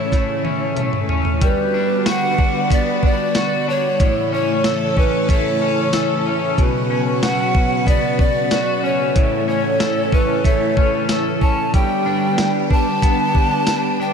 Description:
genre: dream pop.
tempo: 93 BPM.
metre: 4/4.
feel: straight.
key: G lydian.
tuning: A4 = 439 Hz.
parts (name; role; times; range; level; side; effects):
breathy polished pan flute; melody; 0.0-14.1 s; B4 to A5; -21 LUFS; right 1 dB; ping-pong delay, shimmer reverb.
string machine, violins; sustained chords; 0.0-14.1 s; C#3 to B4; -22 LUFS; right 1 dB; ensemble chorus, shimmer reverb.
electric guitar at the edge of break-up; arpeggios; 0.0-14.1 s; A2 to A4; -22 LUFS; left 3 dB; analog chorus, ping-pong delay, shimmer reverb.
clean 12-bit digital drum machine; drums; 0.1-13.8 s; hi-hat, kick drum, snare drum, tambourine, toms; -18 LUFS; equal; none.
room: moderate huge ambient reverb, RT60 8.5 s.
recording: none.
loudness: -15 LUFS.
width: side -6 dB against mid.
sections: 0.0-1.4 A section; 1.4-14.1 B section.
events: drum fill 0.1-1.4.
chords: 0.0 A; 1.4 Gmaj7; 4.0 A; 6.6 Bsus2; 9.2 A; 11.7 G.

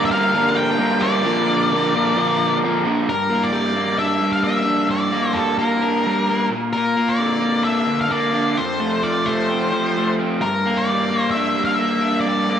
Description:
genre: rock.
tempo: 131 BPM.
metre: 4/4.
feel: straight.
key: G dorian.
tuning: A4 = 440 Hz.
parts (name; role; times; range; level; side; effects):
octave-fuzz lead guitar; melody; 0.0-12.6 s; A4 to G5; -21 LUFS; left 2 dB; distortion, slapback echo.
crunchy overdriven guitar; riff; 0.0-12.6 s; F2 to Bb4; -19 LUFS; right 1 dB; slapback echo.
room: wet lush hall reverb, RT60 2.1 s.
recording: big arena sound.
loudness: -17 LUFS.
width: side -8 dB against mid.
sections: 0.0-3.1 A section; 3.1-12.6 B section.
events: none.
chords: 0.0 Gm; 1.3 Bb; 3.1 Gm; 6.5 Bb; 8.6 F; 10.4 Gm.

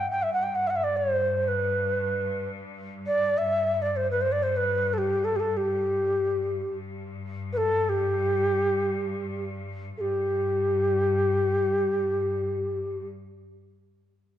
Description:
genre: Persian modal ensemble.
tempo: free time.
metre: none.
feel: none.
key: G dastgah mahur.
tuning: A4 = 440 Hz.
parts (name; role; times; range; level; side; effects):
breathy reedy ney; melody; 0.0-13.1 s; G4 to G5; -24 LUFS; equal; none.
bright symphonic cello section; drone; 0.0-13.1 s; G2; -32 LUFS; left 2 dB; none.
room: moderate recital hall reverb, RT60 1.8 s.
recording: dark, warm production, nothing above 10.7 kHz.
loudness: -24 LUFS.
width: side -11 dB against mid.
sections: 0.0-10.0 A section; 10.0-13.3 B section.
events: none.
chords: none.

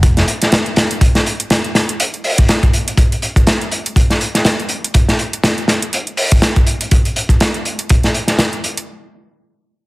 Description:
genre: breakbeat, breaks.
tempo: 122 BPM.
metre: 4/4.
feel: swing 57% on 16ths.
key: none.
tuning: none.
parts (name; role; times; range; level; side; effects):
crunchy breakbeat drum kit; drums; 0.0-8.8 s; hi-hat, kick drum, snare drum; -12 LUFS; equal; none.
electronic hi-hat; drums; 0.0-8.9 s; none; -23 LUFS; right 2 dB; none.
room: light reverb.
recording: heavily compressed radio sound.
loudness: -12 LUFS.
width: side -21 dB against mid.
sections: 0.0-8.9 A section.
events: none.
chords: none.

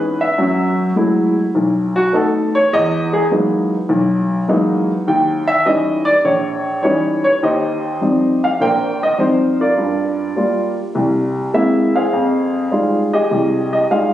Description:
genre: solo jazz.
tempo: 102 BPM.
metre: 4/4.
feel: swing 69% on 8ths.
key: Eb major from 7.4 s.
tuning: A4 = 440 Hz.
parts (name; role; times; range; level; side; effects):
warm upright piano; solo; 0.0-14.1 s; Bb1 to G5; -14 LUFS; equal; none.
room: wet large studio reverb, RT60 1.4 s.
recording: recorded on a phone in the room, studio reverb, compression.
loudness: -14 LUFS.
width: side -12 dB against mid.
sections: 0.0-7.4 A section; 7.4-14.1 B section.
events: upright piano solo 0.0-7.4.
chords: 0.4 Gbm9; 1.5 B7; 2.7 Emaj9#11; 5.1 Eb7b9; 7.4 Eb69; 9.8 Gm7; 10.9 Caug7; 12.1 Fm9.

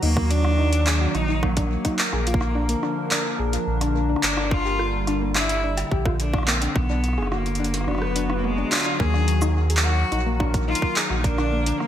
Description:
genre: IDM.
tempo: 107 BPM.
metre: 4/4.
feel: straight.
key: Eb harmonic minor.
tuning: A4 = 440 Hz.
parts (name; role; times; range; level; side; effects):
bright cello; melody; 0.0-11.9 s; Gb3 to Ab4; -27 LUFS; left 1 dB; ping-pong delay.
hollow soft pad; sustained chords; 0.0-11.9 s; D3 to B4; -28 LUFS; equal; chorus.
soft round pluck; arpeggios; 0.0-11.8 s; Bb3 to Ab4; -30 LUFS; left 3 dB; chorus, ping-pong delay.
warm sub bass; bass; 0.0-11.7 s; F#1 to Eb2; -24 LUFS; equal; none.
booming analog drum machine; drums; 0.0-11.9 s; cabasa, crash cymbal, handclaps, hi-hat, rim click; -26 LUFS; equal; gated reverb.
electronic kick drum; drums; 0.2-11.4 s; none; -23 LUFS; equal; none.
room: light reverb, digital ambience.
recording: bright 1980s-style digital production.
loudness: -20 LUFS.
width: side -10 dB against mid.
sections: 0.0-11.9 A section.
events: none.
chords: 0.0 Ebm; 2.3 Bb; 4.5 Gm7; 6.8 Bm; 9.0 Ebm; 11.2 Bb.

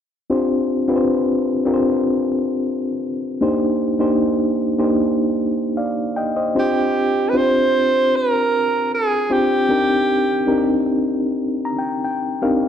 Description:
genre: soul.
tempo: 77 BPM.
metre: 4/4.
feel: straight.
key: unclear.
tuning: A4 = 441 Hz.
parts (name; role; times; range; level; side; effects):
reed electric piano; accompaniment; 0.3-12.7 s; Bb3 to Bb5; -18 LUFS; left 1 dB; harmonic tremolo.
breathy alto saxophone; melody; 6.6-10.9 s; G4 to C5; -18 LUFS; right 2 dB; slapback echo.
room: moderate echo chamber reverb, RT60 1.8 s, small room ambience.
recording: none.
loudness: -16 LUFS.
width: side -8 dB against mid.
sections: 0.3-6.5 A section; 6.5-12.7 B section.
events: reed electric piano fill 11.2-12.7.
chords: 0.3 G7sus4; 3.4 Cm9; 6.5 G7sus4; 9.7 Cm9.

